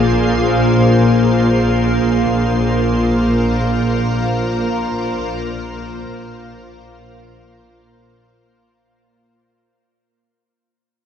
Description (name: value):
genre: ambient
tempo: free time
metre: none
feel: none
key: unclear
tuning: A4 = 440 Hz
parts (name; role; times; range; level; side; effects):
- soft additive organ-like pad; sustained chords; 0.0-8.8 s; Bb2 to C5; -17 LUFS; equal; ensemble chorus, built-in reverb
- dark studio double bass section; bass; 0.0-8.7 s; Bb1; -19 LUFS; equal; none
- bowed-like drone; drone; 0.0-8.9 s; Bb3; -21 LUFS; left 1 dB; built-in reverb
room: wet lush hall reverb, RT60 2.9 s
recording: dark, warm production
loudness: -13 LUFS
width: side -8 dB against mid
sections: 0.0-8.8 A section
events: fade-out 0.3-8.8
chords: 0.0 Fm/Bb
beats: free time